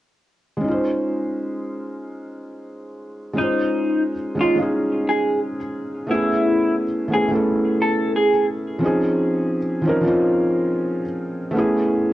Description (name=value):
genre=hip hop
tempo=88 BPM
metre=4/4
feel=swing 57% on 16ths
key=Db major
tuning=A4 = 440 Hz
part: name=felt-muted upright piano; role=accompaniment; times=0.6-12.1 s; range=F3 to Eb5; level=-20 LUFS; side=equal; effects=cassette tape
part: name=electric guitar through a small old amp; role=melody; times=3.4-8.5 s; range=Eb4 to A4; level=-21 LUFS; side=equal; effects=phaser, tape echo
room=wet studio reverb, RT60 0.6 s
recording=cassette tape, nothing above 11.0 kHz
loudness=-18 LUFS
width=side -15 dB against mid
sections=0.6-3.4 A section; 3.4-12.1 B section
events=none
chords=0.6 Dbmaj9; 6.1 Amaj9; 8.8 Dbmaj9; 11.5 Amaj9